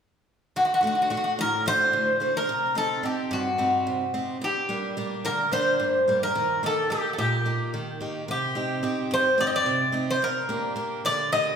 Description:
greek folk, Greek bouzouki band; 217 BPM (eighths); 7/8; straight; D phrygian dominant; A4 = 440 Hz
Greek bouzouki; melody; 0.6-11.6 s; F#4 to Eb5; -23 LUFS; equal
picked steel-string acoustic guitar; accompaniment; 0.6-11.6 s; G2 to G4; -29 LUFS; right 2 dB
wet recital hall reverb, RT60 1.6 s; recorded in a church or concert hall; -22 LUFS; side -7 dB against mid
0.6-11.6 A section
0.6 D; 2.5 Cm; 4.4 Gm; 6.4 Eb; 8.3 Cm; 10.2 Gm

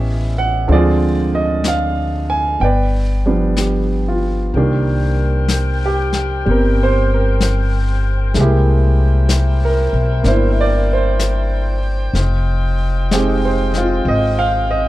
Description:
jazz ballad; 63 BPM; 4/4; swing 67% on 8ths; C minor; A4 = 443 Hz
clear baby grand piano; accompaniment; 0.0-14.9 s; D3 to Ab5; -18 LUFS; right 2 dB
upright bass; bass; 0.0-14.9 s; F1 to D2; -16 LUFS; left 1 dB
vintage brush drum kit; drums; 0.7-14.9 s; brushed snare drum, hi-hat, snare drum; -24 LUFS; left 4 dB
mellow saxophone section; sustained chords; 4.5-14.9 s; E4 to G5; -25 LUFS; left 4 dB
light reverb; dark, warm production; -14 LUFS; side -16 dB against mid
0.0-4.5 A section; 4.5-14.9 B section
0.0 A7; 0.7 Dm7b5; 2.6 G7; 4.5 Cm7; 8.4 C7b13; 12.2 Fm7

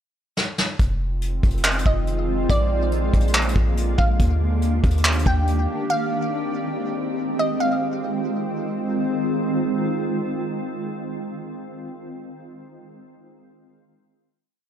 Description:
hip hop, atmospheric cloud-rap; 141 BPM; 4/4; half-time; F dorian; A4 = 439 Hz
vintage brush drum kit; drums; 0.4-5.6 s; handclaps, hi-hat, kick drum, snare drum; -20 LUFS; equal
shimmering ambient pad; sustained chords; 1.3-11.3 s; D3 to G4; -25 LUFS; right 1 dB; chorus, built-in reverb, sidechain pumping
warm 808-style bass; bass; 0.8-5.7 s; F1 to Eb2; -22 LUFS; equal
glassy wavetable pluck; melody; 1.9-8.8 s; D5 to G5; -27 LUFS; right 1 dB; chorus, ping-pong delay
light reverb, small room ambience; -20 LUFS; side -9 dB against mid
0.0-0.8 pickup bar; 0.8-7.6 verse; 7.6-11.0 final chord
drum fill 0.4-0.8
0.0 N.C.; 0.8 Fm7; 2.5 Bb7; 4.2 Ebmaj7; 5.9 Abmaj7; 7.6 Fm7

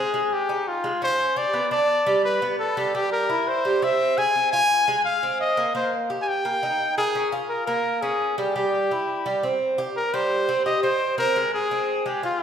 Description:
latin; 171 BPM; 4/4; straight; A4 = 441 Hz
warm trumpet; melody; 0.0-12.4 s; F4 to Ab5; -22 LUFS; left 1 dB
Cuban tres; arpeggios; 0.0-12.4 s; G3 to Bb4; -25 LUFS; right 2 dB
wet scoring stage reverb, RT60 1.6 s; recorded in a church or concert hall; -20 LUFS; side -8 dB against mid
0.0-10.0 A section; 10.0-12.4 B section
0.1 Dbadd9; 1.5 G; 2.9 C; 4.3 Fm; 5.7 Bbsus4; 7.1 Bbm; 8.6 C; 10.0 Gmadd11; 11.4 Fm

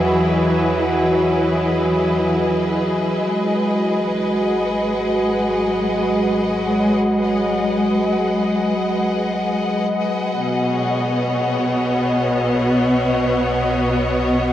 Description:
ambient; free time; A4 = 441 Hz
bright studio string section; sustained chords; 0.0-14.5 s; B2 to F#5; -18 LUFS; equal; low-pass filter
deep rumbling drone; bass; 0.0-14.5 s; G#1 to E2; -33 LUFS; equal; built-in reverb
analog drone; drone; 0.0-10.5 s; F#3 to F#4; -22 LUFS; equal; chorus
wet huge ambient reverb, RT60 7.7 s; worn, warbling old tape, cassette tape, warbly pitch drift; -16 LUFS; side -12 dB against mid
0.0-10.4 A section; 10.4-14.5 B section
fade-out on synth drone 0.0-10.4
0.0 Emaj9; 3.2 G#m7; 10.4 Badd9

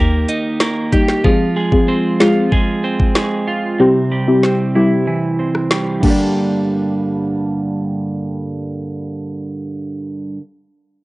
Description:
dancehall; 94 BPM; 4/4; straight; G phrygian; A4 = 439 Hz
twelve-string electric guitar; arpeggios; 0.0-10.4 s; G2 to G4; -18 LUFS; right 2 dB; low-pass filter, cassette tape
downlifter; sound effects; 0.0-1.2 s; barely audible
island pop drum kit; drums; 0.3-6.2 s; crash cymbal, finger snaps, hi-hat, kick drum, rim click, snare drum; -17 LUFS; equal; cassette tape
deep mellow chord stab; accompaniment; 0.9-10.4 s; G3 to Ab4; -15 LUFS; left 1 dB; chorus, sidechain pumping, low-pass filter, cassette tape
light reverb; home recording on cassette, nothing above 11.0 kHz; -14 LUFS; side -20 dB against mid
0.0-6.4 A section; 6.4-8.9 B section
filter sweep 0.0-6.4
0.0 Eb; 1.2 Fm; 3.8 C; 6.0 Gm

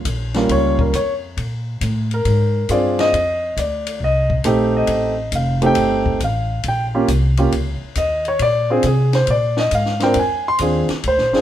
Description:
jazz piano trio; 136 BPM; 4/4; swing 67% on 8ths; A4 = 440 Hz
upright bass; bass; 0.0-11.4 s; F1 to C3; -20 LUFS; equal
compact cocktail drum kit; drums; 0.1-11.4 s; hi-hat, kick drum, ride cymbal, snare drum; -27 LUFS; left 2 dB
warm grand piano; melody; 0.4-11.4 s; G3 to C6; -17 LUFS; equal
moderate studio reverb, RT60 0.7 s; band playing live in one room; -16 LUFS; side -11 dB against mid
0.0-11.4 A section
grand piano solo 0.0-11.4
0.0 Eb9 (rootless); 1.4 Bb9; 3.1 F9; 6.6 Eb7; 8.4 Bb9

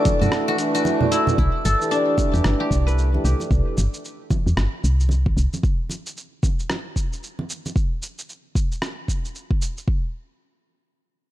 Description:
organic downtempo; 113 BPM; 4/4; swing 60% on 16ths; A4 = 438 Hz
hand-pumped harmonium; accompaniment; 0.0-3.8 s; E3 to G4; -25 LUFS; right 2 dB; sidechain pumping, low-pass filter, ping-pong delay
warbly tape-like pad; sustained chords; 0.0-1.3 s; A4 to B5; -36 LUFS; left 4 dB
guzheng; arpeggios; 0.0-5.6 s; D4 to B4; -23 LUFS; left 2 dB; low-pass filter, ping-pong delay
twinkling granular texture; texture; 0.0-1.4 s; D5; -41 LUFS; right 1 dB
dusty soul sampler-style drum kit; drums; 0.1-9.9 s; hi-hat, rim click, shaker; -31 LUFS; right 1 dB
electronic kick drum; drums; 0.1-10.0 s; -22 LUFS; equal
congas; percussion; 0.1-7.7 s; -27 LUFS; right 2 dB
woody FM bass; bass; 0.2-5.5 s; G1 to F#2; -19 LUFS; equal; tube saturation
digital ambience; dark, warm production; -19 LUFS; side -14 dB against mid
0.0-1.4 A section; 1.4-9.9 B section; 9.9-11.3 C section
kick drops out 0.3-1.4; filter sweep on harmonium 1.4-3.5
0.0 D6; 1.4 Cmaj7; 5.6 N.C.

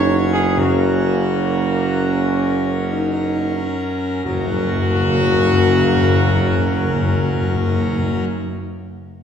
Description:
classical, ceremonial fanfare; 44-57 BPM; 3/4; straight; F# major; A4 = 439 Hz
dark trumpet section; melody; 0.0-8.2 s; F#4 to C#5; -23 LUFS; left 1 dB
clear trombone section; sustained chords; 0.0-8.3 s; C#3 to B3; -27 LUFS; right 4 dB
mellow French horn section; sustained chords; 0.0-8.2 s; A#3 to F#4; -24 LUFS; left 1 dB
pipe organ, full organ; sustained chords; 0.0-8.3 s; F#2 to C#5; -23 LUFS; left 2 dB
warm tuba; bass; 0.0-8.2 s; F#1; -22 LUFS; right 4 dB
timpani; percussion; 0.6-8.2 s; F#2; -20 LUFS; left 2 dB
wet scoring stage reverb, RT60 2.0 s; -15 LUFS; side -8 dB against mid
0.0-4.3 A section; 4.3-8.3 B section
slowing down 0.0-4.3
0.0 F#

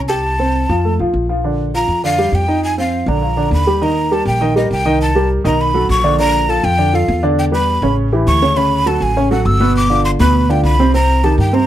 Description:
Afro-Cuban jazz; 202 BPM; 4/4; straight; Bb major; A4 = 441 Hz
warm upright piano; accompaniment; 0.0-11.7 s; Cb3 to G5; -16 LUFS; right 1 dB
upright bass; bass; 0.0-11.7 s; G1 to G2; -17 LUFS; equal
breathy mellow jazz flute; melody; 0.1-11.7 s; Eb5 to E6; -17 LUFS; equal
light reverb; -12 LUFS; side -12 dB against mid
0.0-3.8 A section; 3.8-11.7 B section
0.2 C5; 0.8 Fadd11; 1.4 Bb6; 2.6 F5; 3.2 Bb; 3.8 Eb; 5.0 Cm7; 5.6 B9; 6.2 Bbmaj7; 7.4 Em7; 8.0 A7; 8.6 Dmaj9; 9.8 G7; 10.9 Cm7

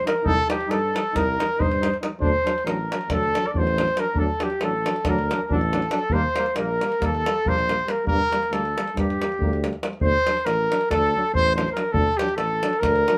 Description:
balkan folk, Balkan brass band; 277 BPM (eighths); 9/8; straight; A4 = 439 Hz
dark trumpet; melody; 0.0-13.2 s; G4 to D5; -26 LUFS; equal
warm clarinet; second line; 0.0-13.2 s; G4 to D5; -31 LUFS; equal
brilliant trombone; accompaniment; 0.0-13.2 s; Bb3 to Eb4; -35 LUFS; equal
mellow euphonium; accompaniment; 0.0-13.2 s; F#3 to G3; -35 LUFS; equal
davul; percussion; 0.1-13.2 s; -29 LUFS; equal
mellow tuba; bass; 0.2-13.1 s; A1 to G2; -30 LUFS; equal
moderate studio reverb, RT60 0.5 s; -23 LUFS; mono
0.0-10.0 A section; 10.0-13.2 A section
0.3 Cm; 2.2 D; 6.1 Eb; 8.1 Gm; 10.0 D

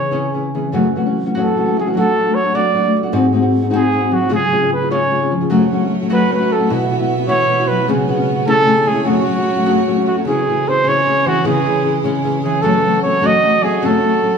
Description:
mexican folk, mariachi; 101 BPM (dotted quarters); 6/8; rubato; F# minor, C# minor from 10.3 s; A4 = 440 Hz
mellow trumpet; melody; 0.0-14.4 s; F#4 to D#5; -16 LUFS; right 2 dB
nylon-string guitar; accompaniment; 0.0-14.3 s; F#2 to A4; -18 LUFS; left 2 dB
concert harp; arpeggios; 0.0-14.4 s; G#2 to F#4; -19 LUFS; equal
clear studio violin section; sustained chords; 5.5-14.4 s; G#3 to G#5; -28 LUFS; right 2 dB
wet large studio reverb, RT60 1.2 s; band playing live in one room; -13 LUFS; side -6 dB against mid
0.7-10.3 A section; 10.3-14.4 B section
0.0 C#m; 0.7 F#m7; 2.0 D/F#; 3.1 G#7; 4.3 C#; 5.5 F#m; 6.7 Bsus4; 7.9 C#7sus4; 8.5 Amaj7; 9.1 F#m; 10.3 C#m; 12.6 F#m

